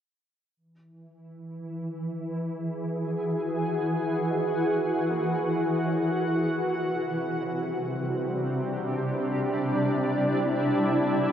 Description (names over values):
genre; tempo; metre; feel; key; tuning
ambient; free time; none; none; unclear; A4 = 441 Hz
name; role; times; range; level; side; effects
shimmering ambient pad; sustained chords; 1.4-11.3 s; C3 to G#4; -25 LUFS; equal; chorus, built-in reverb
felt-muted upright piano; arpeggios; 3.8-7.2 s; A#3 to D#5; -45 LUFS; left 1 dB; none
room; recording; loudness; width
wet huge ambient reverb, RT60 7.9 s; dreamy mix soaked in reverb, nothing above 10.5 kHz; -25 LUFS; side -9 dB against mid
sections
0.6-11.3 A section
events
filter sweep on ambient pad 0.6-11.3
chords
0.6 E; 6.8 Cadd9